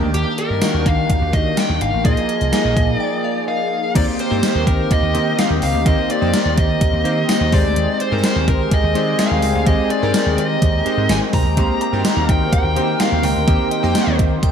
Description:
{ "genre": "1980s-style pop", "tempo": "126 BPM", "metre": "4/4", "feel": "straight", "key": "Eb major", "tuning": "A4 = 441 Hz", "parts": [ { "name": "chorused retro synth keys", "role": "accompaniment", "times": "0.0-14.5 s", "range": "Eb3 to Eb5", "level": "-22 LUFS", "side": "equal", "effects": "slapback echo" }, { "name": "soft string machine", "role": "sustained chords", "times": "0.1-14.5 s", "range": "Eb3 to G5", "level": "-26 LUFS", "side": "equal", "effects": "phaser, ensemble chorus" }, { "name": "vintage slap bass", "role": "bass", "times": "0.0-14.4 s", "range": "Ab1 to Eb3", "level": "-21 LUFS", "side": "equal", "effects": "none" }, { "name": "dark smooth lead guitar", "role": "melody", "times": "0.1-14.2 s", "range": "G4 to Bb5", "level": "-21 LUFS", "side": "left 1 dB", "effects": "overdrive, slapback echo" }, { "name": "gated 80s digital drum machine", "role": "drums", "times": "0.1-14.5 s", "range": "crash cymbal, hi-hat, kick drum, snare drum, tambourine", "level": "-18 LUFS", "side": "equal", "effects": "gated reverb, gated reverb snare, overdrive" }, { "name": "glassy synth bell", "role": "second line", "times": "2.5-3.9, 13.7-14.5 s", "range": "Eb5 to Ab5", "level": "-31 LUFS", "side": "right 3 dB", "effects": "chorus, ping-pong delay, slapback echo" }, { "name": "dark horn section", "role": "stabs", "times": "4.0-14.5 s", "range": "Eb3 to Bb4", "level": "-28 LUFS", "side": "equal", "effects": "ping-pong delay, slapback echo" } ], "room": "moderate scoring stage reverb, RT60 1.6 s, digital ambience", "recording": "big arena sound", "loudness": "-15 LUFS", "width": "side -8 dB against mid", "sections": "0.0-4.0 A section; 4.0-14.5 B section", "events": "break 3.0-4.0", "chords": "0.0 Ebmaj7; 2.0 Bb7sus4; 4.0 Eb6; 7.5 Abmaj7; 11.6 Eb6", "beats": "| 0.14 0.62 1.10 1.57 | 2.05 2.52 3.00 3.48 | 3.95 4.43 4.91 5.38 | 5.86 6.33 6.81 7.29 | 7.76 8.24 8.71 9.19 | 9.67 10.14 10.62 11.10 | 11.57 12.05 12.53 13.00 | 13.48 13.95 14.43" }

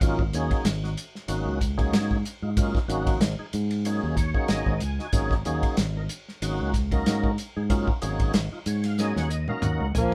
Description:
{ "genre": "electric jazz fusion", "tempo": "94 BPM", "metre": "4/4", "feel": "swing 55% on 16ths", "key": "unclear", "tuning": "A4 = 439 Hz", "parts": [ { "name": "tonewheel organ", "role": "accompaniment", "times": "0.0-10.1 s", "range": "F#3 to G#5", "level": "-32 LUFS", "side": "equal", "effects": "slow rotary speaker, overdrive, chorus vibrato" }, { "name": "fingered electric bass", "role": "bass", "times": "0.0-10.1 s", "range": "G#1 to G#2", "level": "-30 LUFS", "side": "equal", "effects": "none" }, { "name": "damped 70s drum kit", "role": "drums", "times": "0.0-10.1 s", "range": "hi-hat, kick drum, ride cymbal, snare drum, toms", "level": "-28 LUFS", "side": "equal", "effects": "none" }, { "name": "breathy tenor saxophone", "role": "melody", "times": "10.0-10.1 s", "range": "A#3", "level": "-27 LUFS", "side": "equal", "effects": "none" }, { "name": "breathy tenor saxophone", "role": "second line", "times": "10.0-10.1 s", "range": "E#3", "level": "-28 LUFS", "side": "equal", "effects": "none" } ], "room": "light reverb", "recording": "band playing live in one room", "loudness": "-26 LUFS", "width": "mono", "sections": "0.0-10.1 A section", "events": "tonewheel organ fill 3.9-5.1, 8.3-10.1; drum fill 9.0-10.1", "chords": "0.0 G#9sus4", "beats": "| 0.01 0.65 1.29 1.94 | 2.58 3.21 3.86 4.50 | 5.14 5.78 6.42 7.06 | 7.70 8.34 8.98 9.62" }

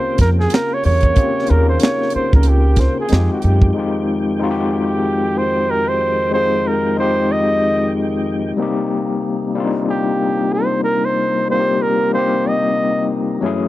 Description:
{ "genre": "R&B, neo-soul", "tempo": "93 BPM", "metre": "4/4", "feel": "swing 60% on 16ths", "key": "F minor", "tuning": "A4 = 441 Hz", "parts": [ { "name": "warm flugelhorn", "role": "melody", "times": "0.0-13.1 s", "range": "G4 to Eb5", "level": "-19 LUFS", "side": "right 1 dB", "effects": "none" }, { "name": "overdriven tine electric piano", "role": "accompaniment", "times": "0.0-13.7 s", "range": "Gb3 to Bb4", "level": "-19 LUFS", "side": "left 4 dB", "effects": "fast tremolo" }, { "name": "percussive tonewheel organ", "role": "sustained chords", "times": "0.0-13.7 s", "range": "F2 to G5", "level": "-27 LUFS", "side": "right 2 dB", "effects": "fast rotary speaker, chorus vibrato" }, { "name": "upright bass", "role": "bass", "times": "0.2-3.7 s", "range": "Db2 to Gb2", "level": "-14 LUFS", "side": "right 1 dB", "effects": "none" }, { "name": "tight funk drum kit", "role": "drums", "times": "0.2-3.7 s", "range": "hi-hat, kick drum, snare drum", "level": "-14 LUFS", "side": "right 1 dB", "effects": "none" } ], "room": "small room ambience", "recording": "dry, close 1970s-style studio recording", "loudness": "-14 LUFS", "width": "side -15 dB against mid", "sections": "0.0-3.7 A section; 3.7-13.7 B section", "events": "flugelhorn solo 0.0-3.7", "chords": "0.0 Eb13; 3.1 Fm9; 8.6 Cm7", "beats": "0.52 | 1.17 1.81 2.46 3.10 | 3.75 4.39 5.04 5.68 | 6.33 6.97 7.62 8.26 | 8.91 9.55 10.20 10.84 | 11.49 12.13 12.78 13.42" }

